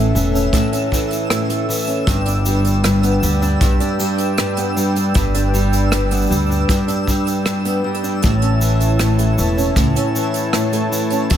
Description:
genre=folktronica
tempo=78 BPM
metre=4/4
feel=straight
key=unclear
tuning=A4 = 440 Hz
part: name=warm analog pad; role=sustained chords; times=0.0-11.4 s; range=C#4 to A5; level=-23 LUFS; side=equal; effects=chorus
part: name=nylon-string guitar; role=arpeggios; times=0.0-11.4 s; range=G2 to D4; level=-19 LUFS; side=equal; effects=ping-pong delay
part: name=upright bass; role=bass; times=0.0-11.4 s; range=E1 to D2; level=-18 LUFS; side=equal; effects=none
part: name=twinkling granular texture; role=texture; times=0.0-11.4 s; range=E6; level=-29 LUFS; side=right 2 dB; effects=built-in reverb
part: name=soft brush drum kit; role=drums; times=0.2-11.4 s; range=hi-hat, rim click, shaker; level=-25 LUFS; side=right 2 dB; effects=none
part: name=kick drum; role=drums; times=0.5-11.4 s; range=none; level=-18 LUFS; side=equal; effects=none
room=small room reverb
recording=none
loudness=-15 LUFS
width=side -10 dB against mid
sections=0.0-11.4 A section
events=none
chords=0.0 A; 2.1 G; 8.2 A

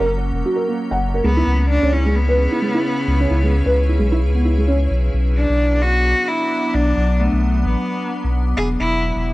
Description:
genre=IDM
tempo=131 BPM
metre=4/4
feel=swing 56% on 16ths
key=B dorian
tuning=A4 = 439 Hz
part: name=clear cello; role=melody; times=0.0-9.2 s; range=A3 to G#4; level=-21 LUFS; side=equal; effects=tape echo
part: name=icy glass pad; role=sustained chords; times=0.0-9.3 s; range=C#3 to B4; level=-24 LUFS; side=equal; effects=chorus, built-in reverb
part: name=felt-muted upright piano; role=arpeggios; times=0.0-4.7 s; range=G#3 to F#5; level=-20 LUFS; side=right 1 dB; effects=tape echo
part: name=warm sub bass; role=bass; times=0.0-9.3 s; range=E1 to C#2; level=-18 LUFS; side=equal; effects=none
room=light reverb, studio reverb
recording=worn, warbling old tape, cassette tape, warbly pitch drift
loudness=-15 LUFS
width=side -18 dB against mid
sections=0.0-4.9 A section; 4.9-9.3 A section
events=none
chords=0.0 F#; 1.2 C#m7; 4.9 Bm; 8.6 E

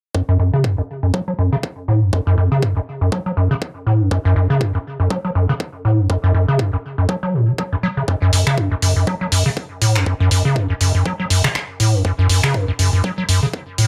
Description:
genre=acid house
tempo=121 BPM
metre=4/4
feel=swing 56% on 16ths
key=F# minor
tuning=A4 = 441 Hz
part: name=acid bass, square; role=riff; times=0.1-13.9 s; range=F#2 to F#3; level=-18 LUFS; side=equal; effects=overdrive, lush chorus, digital delay
part: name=electronic kick drum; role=drums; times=0.1-13.6 s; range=none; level=-28 LUFS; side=equal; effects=overdrive, high-pass filter on kick, high-pass filter on room
part: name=punchy analog drum machine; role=drums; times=8.3-13.9 s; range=finger snaps, hi-hat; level=-23 LUFS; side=equal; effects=none
room=moderate studio reverb, RT60 0.6 s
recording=none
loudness=-18 LUFS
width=mono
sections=0.1-13.9 A section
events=filter sweep on acid bass 0.1-13.9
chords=none

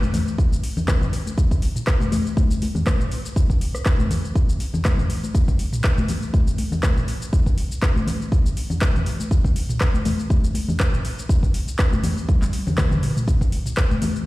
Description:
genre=house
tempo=121 BPM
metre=4/4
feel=swing 55% on 16ths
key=none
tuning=none
part: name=afro-pop drum kit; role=drums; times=0.0-14.2 s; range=handclaps, hi-hat, rim click, shaker, toms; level=-26 LUFS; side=equal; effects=overdrive
part: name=congas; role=percussion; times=0.0-14.1 s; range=none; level=-26 LUFS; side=left 2 dB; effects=none
part: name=electronic kick drum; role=drums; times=0.4-13.9 s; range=none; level=-19 LUFS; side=equal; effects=none
room=light reverb, digital ambience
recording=played on a big sound system in a bare room, large studio reverb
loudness=-18 LUFS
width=side -19 dB against mid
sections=0.0-14.3 A section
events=drum fill 12.3-13.3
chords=none

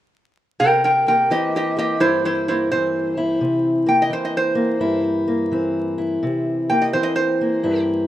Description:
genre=acoustic country blues, solo or duo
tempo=86 BPM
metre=4/4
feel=swing 65% on 8ths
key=C mixolydian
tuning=A4 = 440 Hz
part: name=metal-body resonator slide guitar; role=melody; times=0.6-7.8 s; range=E4 to G5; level=-18 LUFS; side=right 1 dB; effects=none
part: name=fingerpicked steel-string acoustic guitar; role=accompaniment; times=0.6-8.1 s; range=G2 to E4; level=-20 LUFS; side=left 1 dB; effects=none
room=light reverb, studio ambience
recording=rough home demo mix, vinyl crackle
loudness=-17 LUFS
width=side -13 dB against mid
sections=0.6-8.1 A section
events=resonator guitar played with a steel bar solo 0.6-8.1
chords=0.6 C7

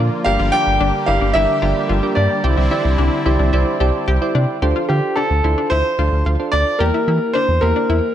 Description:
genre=pop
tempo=110 BPM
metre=4/4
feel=straight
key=D minor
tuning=A4 = 437 Hz
part: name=soft electric-piano-like synth keys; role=accompaniment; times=0.0-8.1 s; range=Bb3 to A5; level=-22 LUFS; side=right 3 dB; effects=chorus
part: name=brassy analog pad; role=sustained chords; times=0.0-4.6 s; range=D3 to G4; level=-23 LUFS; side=equal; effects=chorus
part: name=analog pluck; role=arpeggios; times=0.0-8.0 s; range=D4 to G4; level=-25 LUFS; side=left 6 dB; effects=chorus, slapback echo
part: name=round analog bass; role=bass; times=0.0-8.0 s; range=G1 to E3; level=-18 LUFS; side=equal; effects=none
part: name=clear concert grand piano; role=melody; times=0.2-8.1 s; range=G4 to G5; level=-19 LUFS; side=equal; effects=slapback echo
room=light reverb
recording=none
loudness=-14 LUFS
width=side -10 dB against mid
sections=0.0-4.6 A section; 4.6-8.1 B section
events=synth keys fill 3.5-4.6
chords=0.3 Gm; 2.4 Cadd9; 4.6 Dm7; 6.8 Edim

